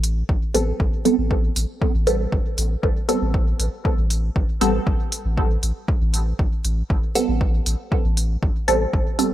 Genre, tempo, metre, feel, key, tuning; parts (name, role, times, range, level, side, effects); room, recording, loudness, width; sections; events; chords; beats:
dub techno; 118 BPM; 4/4; straight; A minor; A4 = 441 Hz
soft dub sub bass; bass; 0.0-9.3 s; A1; -22 LUFS; equal; sidechain pumping
electronic hi-hat; drums; 0.0-9.3 s; -26 LUFS; equal
electronic kick drum; drums; 0.3-9.0 s; -22 LUFS; equal
filtered dub chord stab; stabs; 0.5-9.3 s; G3 to A4; -23 LUFS; right 1 dB; phaser, sidechain pumping, dub echo
light reverb, digital ambience; -19 LUFS; side -13 dB against mid
0.0-9.3 A section
filter sweep on synth stab 0.0-9.3
0.29 | 0.80 1.31 1.82 2.32 | 2.83 3.34 3.85 4.36 | 4.87 5.38 5.88 6.39 | 6.90 7.41 7.92 8.43 | 8.94